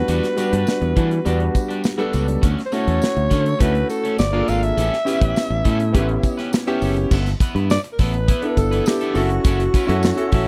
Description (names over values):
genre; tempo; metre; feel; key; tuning
polished 1980s jazz-funk pop; 103 BPM; 4/4; straight; unclear; A4 = 440 Hz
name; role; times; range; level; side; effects
raspy alto saxophone; melody; 0.0-10.5 s; F#4 to F5; -26 LUFS; equal; none
clear concert grand piano; accompaniment; 0.0-10.5 s; G3 to E5; -25 LUFS; equal; subtle chorus
electric guitar at the edge of break-up; riff; 0.1-10.5 s; G3 to B4; -32 LUFS; equal; lush chorus
modern bright fingered electric bass; bass; 0.1-10.5 s; F#1 to E3; -23 LUFS; equal; none
modern studio drum kit; drums; 0.1-10.5 s; crash cymbal, hi-hat, kick drum, snare drum; -22 LUFS; equal; none
tambourine; percussion; 0.1-10.5 s; none; -43 LUFS; equal; none
room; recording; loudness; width
small room reverb; dry, close 1970s-style studio recording; -19 LUFS; mono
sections
0.0-7.1 A section; 7.1-10.5 B section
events
grand piano fill 10.0-10.5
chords
0.0 Em9; 2.4 Dmaj7; 4.2 Gm7; 4.8 A7; 7.1 G69; 9.2 F#m7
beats
| 0.09 0.67 1.26 1.84 | 2.43 3.01 3.60 4.18 | 4.77 5.36 5.94 6.53 | 7.11 7.69 8.28 8.86 | 9.45 10.03